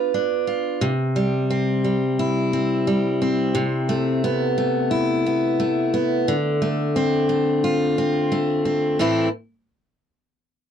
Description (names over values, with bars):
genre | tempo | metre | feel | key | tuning
pop | 88 BPM | 4/4 | straight | A minor | A4 = 441 Hz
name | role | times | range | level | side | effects
picked steel-string acoustic guitar | solo | 0.0-9.3 s | A2 to B4 | -19 LUFS | equal | none
room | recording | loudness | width
light reverb | dry, close 1970s-style studio recording | -19 LUFS | side -8 dB against mid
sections
0.0-9.0 A section; 9.0-10.7 B section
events
none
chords
0.0 Bdim; 0.8 C; 3.6 Amadd9/C; 6.3 Dm7; 9.0 Am